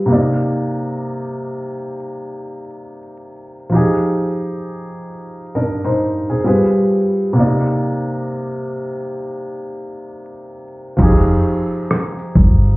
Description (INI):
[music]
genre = lo-fi hip hop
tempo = 66 BPM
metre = 4/4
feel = swing 64% on 16ths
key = C minor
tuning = A4 = 440 Hz
[part]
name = felt-muted upright piano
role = accompaniment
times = 0.0-12.8 s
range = C3 to D5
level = -18 LUFS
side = equal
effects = low-pass filter
[part]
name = deep dub fingered electric bass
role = bass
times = 11.0-12.7 s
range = F1 to G1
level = -13 LUFS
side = equal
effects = none
[part]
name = dusty soul sampler-style drum kit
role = drums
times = 11.0-12.6 s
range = crash cymbal, hi-hat, kick drum, rim click, shaker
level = -16 LUFS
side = equal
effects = none
[sound]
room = wet small room reverb, RT60 0.5 s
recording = heard muffled through a wall, club reverb, vinyl crackle, EQ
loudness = -15 LUFS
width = side -21 dB against mid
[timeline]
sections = 0.0-11.0 A section; 11.0-12.8 B section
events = none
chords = 0.1 Cm9; 3.7 Fm9; 6.4 G7b9; 7.4 Cm9; 11.0 Fm9